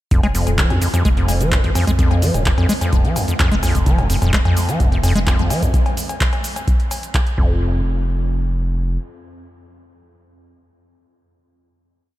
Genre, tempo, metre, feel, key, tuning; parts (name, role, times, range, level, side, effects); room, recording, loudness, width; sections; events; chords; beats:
acid house; 128 BPM; 4/4; straight; A4 = 440 Hz
acid bass, square; riff; 0.1-7.8 s; F2 to Ab3; -20 LUFS; equal; tube saturation, ping-pong delay
saturated sub bass; bass; 0.1-9.0 s; Eb1 to F2; -21 LUFS; equal; sidechain pumping
electro analog drum machine; drums; 0.1-7.4 s; cowbell, handclaps, hi-hat, shaker; -24 LUFS; equal
electronic kick drum; drums; 0.1-7.5 s; -18 LUFS; equal
light reverb, digital ambience; -15 LUFS; side -15 dB against mid
0.1-7.6 drop; 7.6-11.4 final hit
drop 0.1-7.6
| 0.11 0.58 1.05 1.52 | 1.99 2.46 2.92 3.39 | 3.86 4.33 4.80 5.27 | 5.74 6.21 6.67 7.14 | 7.61 8.08 8.55